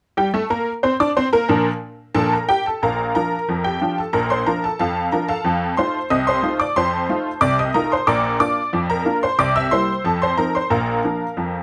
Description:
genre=ragtime piano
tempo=91 BPM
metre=2/4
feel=straight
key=Bb major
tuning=A4 = 439 Hz
part: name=honky-tonk upright piano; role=solo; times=0.2-11.6 s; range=Bb1 to E6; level=-20 LUFS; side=equal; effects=none
room=light reverb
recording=none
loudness=-20 LUFS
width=mono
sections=0.2-2.8 A section; 2.8-11.6 B section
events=none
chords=0.2 Bb; 5.5 F7; 8.1 Bb; 9.4 C7; 10.0 F7; 10.7 Bb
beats=| 0.17 0.84 | 1.49 2.15 | 2.82 3.48 | 4.14 4.79 | 5.45 6.11 | 6.76 7.42 | 8.08 8.73 | 9.39 10.05 | 10.71 11.38

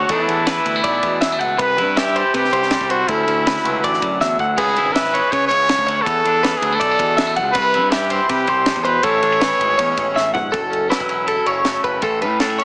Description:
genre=math rock and midwest emo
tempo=161 BPM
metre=4/4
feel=straight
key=unclear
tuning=A4 = 439 Hz
part: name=clear trumpet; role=melody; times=0.0-10.3 s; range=E4 to C#5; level=-18 LUFS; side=equal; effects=none
part: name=twangy electric guitar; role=accompaniment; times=0.0-12.6 s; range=D2 to E4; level=-23 LUFS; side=equal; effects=spring reverb
part: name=twelve-string electric guitar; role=arpeggios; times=0.0-12.6 s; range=A4 to F#5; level=-20 LUFS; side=equal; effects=spring reverb
part: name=growling picked electric bass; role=bass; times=0.0-12.6 s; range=E1 to C#3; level=-26 LUFS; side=equal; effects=overdrive
part: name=compact cocktail drum kit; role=drums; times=0.1-12.6 s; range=crash cymbal, kick drum, ride cymbal, snare drum, toms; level=-24 LUFS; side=equal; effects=none
room=moderate studio reverb, RT60 0.9 s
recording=heavily compressed radio sound, small speaker sound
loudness=-15 LUFS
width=side -34 dB against mid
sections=0.0-10.5 A section; 10.5-12.6 B section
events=drum fill 4.2-4.6, 10.2-10.5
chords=0.1 E7sus4; 1.6 Cmaj7; 3.1 Dmaj7; 4.6 C#m7; 6.1 E7sus4; 7.5 Cmaj7; 9.0 Amaj7; 10.5 F#m7; 12.0 A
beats=| 0.10 0.47 0.84 1.22 | 1.59 1.97 2.34 2.71 | 3.08 3.46 3.83 4.20 | 4.57 4.95 5.32 5.69 | 6.06 6.43 6.80 7.18 | 7.55 7.92 8.29 8.66 | 9.04 9.41 9.78 10.15 | 10.53 10.90 11.28 11.65 | 12.03 12.40

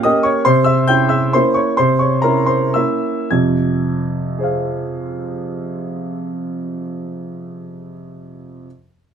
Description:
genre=classical, piano waltz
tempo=98-146 BPM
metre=3/4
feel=rubato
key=F minor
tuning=A4 = 440 Hz
part: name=bright upright piano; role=solo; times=0.0-8.7 s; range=F2 to Ab6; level=-16 LUFS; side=right 1 dB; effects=none
room=little or no reverb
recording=close, detailed microphones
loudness=-15 LUFS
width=side -8 dB against mid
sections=0.0-3.3 A section; 3.3-6.5 B section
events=slowing down 0.0-3.3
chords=0.5 C7b9; 3.3 Fm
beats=0.04 | 0.47 0.89 1.33 | 1.78 2.24 2.75 | 3.32 3.83 4.38 | 4.89 5.39 5.92

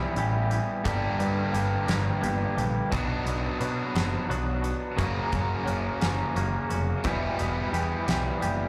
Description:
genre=quiet-loud alternative rock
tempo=58 BPM (dotted quarters)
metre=6/8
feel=straight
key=E minor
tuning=A4 = 442 Hz
part: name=twangy electric guitar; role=arpeggios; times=0.0-8.7 s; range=E2 to G4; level=-34 LUFS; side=equal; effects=tremolo, tape echo, slapback echo
part: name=raw garage guitar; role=riff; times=0.0-8.7 s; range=F#2 to E4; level=-33 LUFS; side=equal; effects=overdrive, slapback echo
part: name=growling picked electric bass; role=bass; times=0.0-8.7 s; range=E1 to B2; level=-32 LUFS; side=equal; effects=overdrive
part: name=huge arena drum kit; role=drums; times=0.2-8.6 s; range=hi-hat, kick drum, snare drum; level=-36 LUFS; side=equal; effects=none
room=light reverb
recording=live gig heard through the venue's PA, club reverb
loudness=-27 LUFS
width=mono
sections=0.0-8.7 A section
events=none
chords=0.0 Em; 0.9 Gm; 2.9 Bm; 5.0 F#; 7.1 Em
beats=| 0.86 1.89 | 2.92 3.96 | 4.99 6.03 | 7.06 8.09

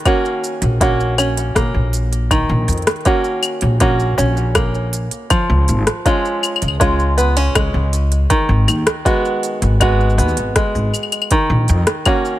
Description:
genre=folktronica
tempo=80 BPM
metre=4/4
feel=straight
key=F# major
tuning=A4 = 440 Hz
part: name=open-back banjo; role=arpeggios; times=0.0-12.4 s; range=D#3 to F#4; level=-18 LUFS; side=right 1 dB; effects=digital delay
part: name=electronic kick drum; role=drums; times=0.1-12.2 s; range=none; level=-18 LUFS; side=equal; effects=overdrive
part: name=organic electronic drum kit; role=drums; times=0.1-12.4 s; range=claves, hi-hat, rim click, shaker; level=-20 LUFS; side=left 1 dB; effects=overdrive
part: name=upright bass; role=bass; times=0.6-11.8 s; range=G#1 to E#2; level=-16 LUFS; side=equal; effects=none
room=small room ambience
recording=none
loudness=-14 LUFS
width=side -14 dB against mid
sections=0.0-12.4 A section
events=none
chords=0.0 F#6/A#; 5.3 C#; 8.3 G#m7; 11.3 F#6/A#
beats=0.06 0.81 1.56 | 2.31 3.06 3.81 4.56 | 5.31 6.06 6.81 7.56 | 8.31 9.06 9.81 10.56 | 11.31 12.06

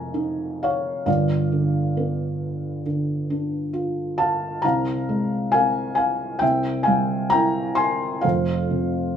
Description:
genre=classical, lyrical solo piano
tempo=67 BPM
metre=4/4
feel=rubato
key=F minor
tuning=A4 = 443 Hz
part: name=felt-muted upright piano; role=solo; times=0.0-9.2 s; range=F1 to C6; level=-20 LUFS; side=equal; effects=none
room=wet studio reverb, RT60 0.7 s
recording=heard from further back in the room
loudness=-20 LUFS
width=side -8 dB against mid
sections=0.0-9.2 A section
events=none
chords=0.0 Fm7; 1.1 G7; 4.6 Fm/C; 6.4 C; 8.2 F5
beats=0.16 | 1.07 1.98 2.86 3.74 | 4.64 5.53 6.42 7.33 | 8.24 9.16

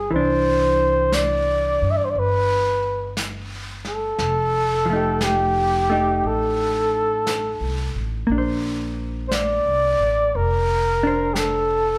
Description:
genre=jazz ballad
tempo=59 BPM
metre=4/4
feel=swing 67% on 8ths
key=unclear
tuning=A4 = 437 Hz
part: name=breathy flugelhorn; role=melody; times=0.0-12.0 s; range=G4 to E5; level=-22 LUFS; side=equal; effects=none
part: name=hollow-body jazz guitar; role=accompaniment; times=0.0-12.0 s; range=E3 to C5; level=-28 LUFS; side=equal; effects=none
part: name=upright bass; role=bass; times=0.0-12.0 s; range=F1 to G2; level=-29 LUFS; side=equal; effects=none
part: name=jazz brush drum kit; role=drums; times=0.1-12.0 s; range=brushed snare drum, hi-hat, snare drum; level=-33 LUFS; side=equal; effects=none
room=moderate large studio reverb, RT60 1.2 s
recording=band playing live in one room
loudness=-21 LUFS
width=mono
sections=0.0-12.0 A section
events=none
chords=0.1 Cmaj9; 4.2 F9; 8.3 Bbadd9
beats=| 0.11 1.13 2.15 3.17 | 4.19 5.21 6.24 7.26 | 8.29 9.31 10.34 11.36

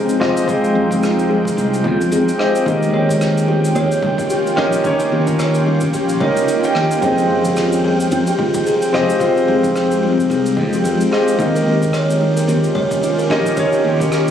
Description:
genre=sunset chillout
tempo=110 BPM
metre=4/4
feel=swing 58% on 16ths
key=F minor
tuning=A4 = 441 Hz
part: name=warm concert grand piano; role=accompaniment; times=0.0-14.3 s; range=Ab3 to G5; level=-20 LUFS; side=moving between left 3 dB and right 4 dB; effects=auto-pan, digital delay
part: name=shimmering ambient pad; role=sustained chords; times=0.0-14.3 s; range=Eb3 to G5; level=-20 LUFS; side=left 1 dB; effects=chorus, built-in reverb
part: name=buzzing kalimba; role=arpeggios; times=0.0-14.3 s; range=Eb4 to Db5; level=-20 LUFS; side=equal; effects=low-pass filter, digital delay
part: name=cabasa and rim click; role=drums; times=0.1-14.3 s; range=none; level=-30 LUFS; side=equal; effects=none
part: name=modern bright fingered electric bass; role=bass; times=0.2-14.3 s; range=F1 to F2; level=-19 LUFS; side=equal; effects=none
part: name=electronic kick drum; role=drums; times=0.5-14.1 s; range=none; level=-28 LUFS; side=equal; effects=none
part: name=congas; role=percussion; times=0.9-14.1 s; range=none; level=-28 LUFS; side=left 2 dB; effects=none
room=moderate plate reverb, RT60 2.3 s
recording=recorded on a phone in the room, club reverb, compression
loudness=-14 LUFS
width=side -9 dB against mid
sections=0.0-14.3 A section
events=filter sweep on kalimba 0.0-14.3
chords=0.0 Fm9; 2.7 Eb7; 7.0 Fm9; 11.4 Eb7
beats=| 0.48 1.03 1.57 2.12 | 2.66 3.21 3.75 4.30 | 4.85 5.39 5.94 6.48 | 7.03 7.57 8.12 8.66 | 9.21 9.76 10.30 10.85 | 11.39 11.94 12.48 13.03 | 13.57 14.12

